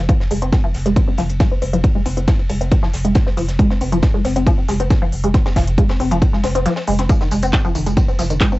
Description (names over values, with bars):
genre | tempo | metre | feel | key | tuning
driving peak-time techno | 137 BPM | 4/4 | straight | F minor | A4 = 440 Hz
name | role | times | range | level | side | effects
resonant blip pluck | riff | 0.0-8.6 s | Eb3 to C4 | -20 LUFS | left 1 dB | phaser, tube saturation, wide subtle chorus, sidechain pumping, cassette tape, analog delay
warm sub bass | bass | 0.0-8.4 s | F1 | -21 LUFS | equal | overdrive, sidechain pumping, low-pass filter
deep reggae drum kit | drums | 0.1-8.5 s | ride cymbal, snare drum | -34 LUFS | equal | sidechain pumping on cymbals, high-pass filter on cymbals, high-pass filter on snare, high-pass filter on room
electronic kick drum | drums | 0.1-8.5 s | none | -15 LUFS | equal | none
techno drum kit | drums | 0.1-8.6 s | handclaps, hi-hat, tambourine | -28 LUFS | equal | none
room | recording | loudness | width
light reverb | home recording on cassette, nothing above 7.9 kHz | -14 LUFS | side -18 dB against mid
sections
0.0-8.6 A section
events
filter sweep on synth arpeggio sound 0.0-8.6; kick drops out 6.7-7.1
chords
0.0 F5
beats
| 0.09 0.53 0.96 1.40 | 1.84 2.28 2.71 3.15 | 3.59 4.03 4.47 4.91 | 5.34 5.78 6.22 6.66 | 7.09 7.53 7.97 8.41